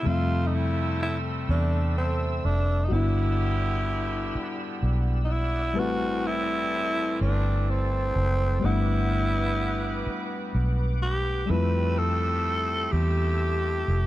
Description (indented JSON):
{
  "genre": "slow six-eight R&B",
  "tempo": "42 BPM (dotted quarters)",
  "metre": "6/8",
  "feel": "straight",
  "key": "unclear",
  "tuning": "A4 = 437 Hz",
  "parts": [
    { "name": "growling tenor saxophone", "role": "melody", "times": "0.0-14.1 s", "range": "C4 to B4", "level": "-29 LUFS", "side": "right 1 dB", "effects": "none" },
    { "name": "tine electric piano", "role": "accompaniment", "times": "0.0-14.1 s", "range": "C3 to F#5", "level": "-31 LUFS", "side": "left 4 dB", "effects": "none" },
    { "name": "percussive tonewheel organ", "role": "sustained chords", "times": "0.0-14.1 s", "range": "A4 to E6", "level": "-39 LUFS", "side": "right 1 dB", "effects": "overdrive, chorus vibrato, slow rotary speaker" },
    { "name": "clear horn section", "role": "stabs", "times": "0.0-13.8 s", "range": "D3 to B4", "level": "-38 LUFS", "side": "right 3 dB", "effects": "digital delay" },
    { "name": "vintage muted fingered electric bass", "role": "bass", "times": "0.1-14.1 s", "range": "F1 to F2", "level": "-25 LUFS", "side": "equal", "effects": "none" }
  ],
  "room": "small room ambience",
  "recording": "none",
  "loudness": "-23 LUFS",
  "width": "side -15 dB against mid",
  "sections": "0.1-14.1 A section",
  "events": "none",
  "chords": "0.1 Fmaj9; 2.9 Em9/G; 5.8 Am9; 8.6 Gmaj7; 11.5 Fmaj9",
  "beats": "| 0.05 1.48 | 2.91 4.34 | 5.76 7.19 | 8.62 10.05 | 11.48 12.91"
}